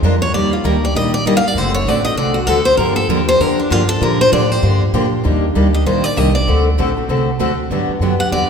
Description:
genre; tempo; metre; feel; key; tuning
acoustic string swing (jazz manouche); 195 BPM; 4/4; swing 60% on 8ths; G minor; A4 = 439 Hz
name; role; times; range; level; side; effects
picked steel-string acoustic guitar; accompaniment; 0.0-8.5 s; D3 to Bb4; -18 LUFS; left 3 dB; none
picked steel-string acoustic guitar; accompaniment; 0.0-8.5 s; D3 to Bb4; -21 LUFS; right 4 dB; none
upright bass; bass; 0.0-8.5 s; F#1 to Bb2; -18 LUFS; equal; none
picked steel-string acoustic guitar; melody; 0.2-8.5 s; D4 to F#5; -17 LUFS; left 1 dB; none
room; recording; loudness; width
wet concert hall reverb, RT60 1.9 s; minimal, uncompressed stereo recording; -13 LUFS; side -6 dB against mid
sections
0.0-5.2 A section; 5.2-8.5 A section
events
steel-string acoustic guitar solo 0.0-8.5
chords
0.3 Ebmaj7; 1.6 D7; 2.8 Gm7; 5.2 Ebmaj7; 6.5 D7; 7.7 Gmaj7

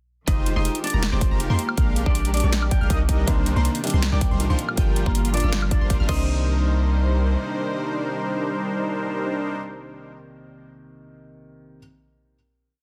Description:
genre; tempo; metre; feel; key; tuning
future bass; 160 BPM; 4/4; half-time; C minor; A4 = 441 Hz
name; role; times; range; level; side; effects
clean electric guitar; melody; 0.3-9.6 s; F3 to G5; -33 LUFS; equal; vintage 12-bit sampler grit, sidechain pumping, digital delay
rich chamber string section; sustained chords; 0.3-9.6 s; C3 to C5; -38 LUFS; equal; sidechain pumping
unison pluck; arpeggios; 0.3-9.6 s; Bb5 to G6; -39 LUFS; equal; sidechain pumping, digital delay
soft supersaw; riff; 0.3-9.6 s; G3 to G5; -30 LUFS; equal; sidechain pumping, digital delay
long sustained 808-style bass; bass; 0.3-7.4 s; F1 to F2; -24 LUFS; equal; sidechain pumping
big-room dance drum kit; drums; 0.3-6.2 s; crash cymbal, hi-hat, snare drum, woodblock; -32 LUFS; equal; none
electronic kick drum; drums; 0.3-6.2 s; none; -24 LUFS; equal; none
felt-muted upright piano; accompaniment; 3.3-11.8 s; Bb2 to C5; -36 LUFS; equal; sidechain pumping, digital delay
room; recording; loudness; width
light reverb, digital ambience; dense, heavily limited modern master, faint mains hum; -22 LUFS; mono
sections
0.3-6.3 drop; 6.3-9.3 final hit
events
drop 0.3-6.3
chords
0.3 Fm9; 1.8 Bb13; 3.1 Cm9; 4.6 Gm7; 6.1 Cm9

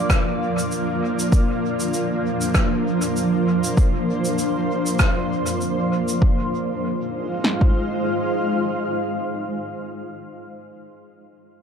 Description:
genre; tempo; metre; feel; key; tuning
ambient dub; 98 BPM; 4/4; swing 55% on 16ths; F dorian; A4 = 440 Hz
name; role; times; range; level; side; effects
granular cloud pad; sustained chords; 0.0-9.4 s; F3 to F5; -22 LUFS; equal; built-in reverb
deep house drum kit; drums; 0.1-7.7 s; kick drum, snare drum; -18 LUFS; equal; overdrive
rim click and shaker; drums; 0.1-6.2 s; none; -27 LUFS; equal; dub echo
room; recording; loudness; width
moderate spring reverb, RT60 1.9 s; none; -19 LUFS; side -7 dB against mid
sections
0.0-6.2 A section; 6.2-8.7 B section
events
none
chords
0.0 Bb/F; 6.2 Fm7

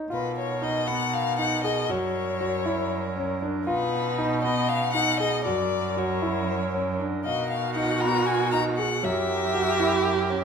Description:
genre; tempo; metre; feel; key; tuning
contemporary instrumental, chamber music in an uneven meter; 235 BPM (eighths); 7/8; straight; unclear; A4 = 440 Hz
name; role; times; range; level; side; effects
warm concert grand piano; arpeggios; 0.0-10.4 s; Gb3 to F5; -29 LUFS; equal; none
rich violin; melody; 0.1-10.4 s; B4 to A#5; -28 LUFS; left 6 dB; none
warm woodwind section; sustained chords; 0.1-10.4 s; Gb3 to A#4; -35 LUFS; equal; none
rich cello; bass; 0.1-10.4 s; Gb2 to B2; -30 LUFS; right 4 dB; none
warm viola; second line; 7.2-10.4 s; F#4 to G4; -26 LUFS; right 5 dB; none
room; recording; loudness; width
moderate recital hall reverb, RT60 1.4 s; minimal, uncompressed stereo recording; -23 LUFS; side -6 dB against mid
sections
0.1-10.4 A section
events
none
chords
0.1 Bmaj7; 1.9 Gb7b9; 3.7 Badd9; 5.4 Gb7b9; 7.2 Bmaj7; 9.0 Gb7b9

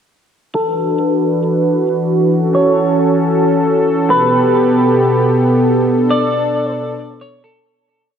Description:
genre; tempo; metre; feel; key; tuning
hip hop; free time; none; none; D major; A4 = 444 Hz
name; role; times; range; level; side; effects
clean electric guitar; melody; 0.5-7.6 s; A4 to D5; -18 LUFS; equal; lush chorus, low-pass filter, tape echo
warm analog pad; sustained chords; 0.5-7.6 s; B2 to B4; -13 LUFS; equal; chorus, low-pass filter
room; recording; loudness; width
wet lush hall reverb, RT60 2.4 s; dreamy mix soaked in reverb; -12 LUFS; side -8 dB against mid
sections
0.5-7.7 breakdown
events
filter sweep 0.5-7.7; fade-out 5.9-7.7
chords
0.5 D69; 2.3 F#m7; 4.1 Asus2; 5.9 Bm7

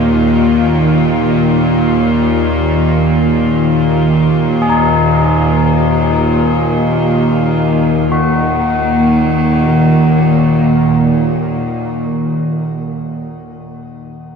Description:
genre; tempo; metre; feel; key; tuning
ambient; free time; none; none; Eb minor; A4 = 442 Hz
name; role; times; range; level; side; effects
warm studio cello section; sustained chords; 0.0-12.1 s; Eb3 to F4; -15 LUFS; equal; shimmer reverb
bowed-like drone; drone; 0.0-12.0 s; Eb2 to Bb2; -13 LUFS; equal; built-in reverb
tubular bells; arpeggios; 4.6-14.4 s; Eb4 to Ab4; -19 LUFS; left 3 dB; tape echo, shimmer reverb
room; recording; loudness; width
wet cathedral reverb, RT60 7.1 s; in a vast, echoing space; -10 LUFS; side -6 dB against mid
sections
0.0-8.1 A section; 8.1-11.9 B section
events
none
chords
0.0 Ebsus2; 8.1 Ebm

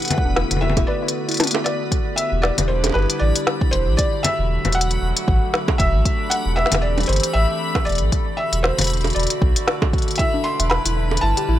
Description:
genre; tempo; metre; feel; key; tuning
IDM; 116 BPM; 4/4; swing 56% on 16ths; E minor; A4 = 440 Hz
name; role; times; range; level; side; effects
felt-muted upright piano; melody; 0.0-11.6 s; B4 to C6; -24 LUFS; equal; dub echo
warbly tape-like pad; sustained chords; 0.0-11.6 s; B2 to B4; -27 LUFS; equal; chorus, built-in reverb
organic electronic drum kit; drums; 0.0-11.5 s; bongos, congas, hi-hat, snare drum, toms; -21 LUFS; left 1 dB; none
backwards swelling texture; texture; 0.0-11.6 s; B3 to B5; -31 LUFS; left 1 dB; built-in reverb
warbly dusty pluck; arpeggios; 0.1-1.7, 10.2-11.6 s; D4 to E5; -28 LUFS; left 2 dB; chorus, ping-pong delay
electronic kick drum; drums; 0.2-10.3 s; none; -20 LUFS; equal; none
warm sub bass; bass; 0.3-11.6 s; E1 to B1; -21 LUFS; equal; none
room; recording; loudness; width
digital ambience; none; -17 LUFS; side -12 dB against mid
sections
0.0-1.9 A section; 1.9-11.6 B section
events
kick drops out 0.9-1.9; drum fill 1.4-1.9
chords
0.0 Bm7/E; 1.9 Em7; 4.0 D/E; 6.1 Am7/E; 8.1 Bm7/E; 10.2 Em7

